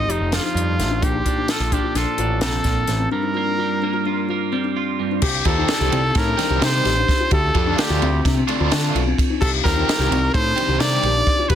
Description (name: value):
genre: math rock and midwest emo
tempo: 258 BPM (eighths)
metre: 9/8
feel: straight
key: unclear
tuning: A4 = 440 Hz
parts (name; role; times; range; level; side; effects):
- bright trumpet; melody; 0.0-11.6 s; Eb4 to Eb5; -22 LUFS; equal; none
- twelve-string electric guitar; accompaniment; 0.0-7.3 s; F2 to F4; -26 LUFS; right 10 dB; none
- kalimba; arpeggios; 0.0-11.6 s; C4 to G4; -25 LUFS; left 8 dB; none
- growling picked electric bass; bass; 0.0-11.6 s; F1 to D3; -22 LUFS; right 1 dB; overdrive
- compact cocktail drum kit; drums; 0.1-11.6 s; crash cymbal, hi-hat, kick drum, ride cymbal, snare drum; -22 LUFS; equal; none
- crunchy overdriven guitar; riff; 5.5-11.1 s; D3 to G4; -24 LUFS; right 2 dB; tremolo
room: light reverb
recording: dense, heavily limited modern master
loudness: -17 LUFS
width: side -10 dB against mid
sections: 0.0-5.2 A section; 5.2-11.6 B section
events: none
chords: 0.0 F9; 1.0 Bbmaj9; 3.1 Gm7; 5.2 Cm9; 7.3 Dm7; 9.4 Cm9